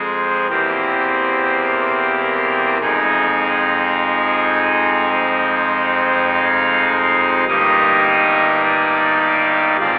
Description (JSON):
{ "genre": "classical, chorale-style piece for pipe organ", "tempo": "52 BPM", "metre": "4/4", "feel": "rubato", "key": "Eb major", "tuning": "A4 = 441 Hz", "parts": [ { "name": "pipe organ, trumpet", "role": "solo", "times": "0.0-10.0 s", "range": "E1 to F5", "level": "-13 LUFS", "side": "equal", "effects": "none" } ], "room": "wet church reverb, RT60 3.1 s", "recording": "vinyl crackle, telephone sound", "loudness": "-13 LUFS", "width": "side -29 dB against mid", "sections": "0.0-10.0 A section", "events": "none", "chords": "0.0 Fm; 0.5 C7/E; 2.8 Fm7; 7.5 Eb/G" }